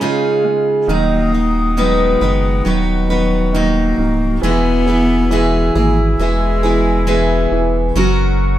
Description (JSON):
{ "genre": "pop", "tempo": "68 BPM", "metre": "4/4", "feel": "straight", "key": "unclear", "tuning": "A4 = 441 Hz", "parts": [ { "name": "warm cello", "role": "melody", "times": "0.0-7.5 s", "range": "F#3 to C#4", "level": "-20 LUFS", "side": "left 2 dB", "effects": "none" }, { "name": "clear concert grand piano", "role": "accompaniment", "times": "0.0-8.6 s", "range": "C#3 to G#3", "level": "-20 LUFS", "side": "right 4 dB", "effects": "none" }, { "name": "picked steel-string acoustic guitar", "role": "arpeggios", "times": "0.0-8.6 s", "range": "C#3 to B4", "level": "-17 LUFS", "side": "equal", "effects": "none" }, { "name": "clear woodwind section", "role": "sustained chords", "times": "0.9-8.6 s", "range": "F#4 to E6", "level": "-25 LUFS", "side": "left 2 dB", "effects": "none" }, { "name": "warm sub bass", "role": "bass", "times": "0.9-8.6 s", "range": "C#1 to G#1", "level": "-18 LUFS", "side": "equal", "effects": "none" } ], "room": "light reverb", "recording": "rough home demo mix", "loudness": "-13 LUFS", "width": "side -12 dB against mid", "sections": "0.0-8.0 A section", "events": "none", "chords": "0.0 C#add9; 0.9 B/D#; 4.4 E; 8.0 F#", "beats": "0.01 | 0.89 1.77 2.66 3.54 | 4.42 5.30 6.19 7.07 | 7.95" }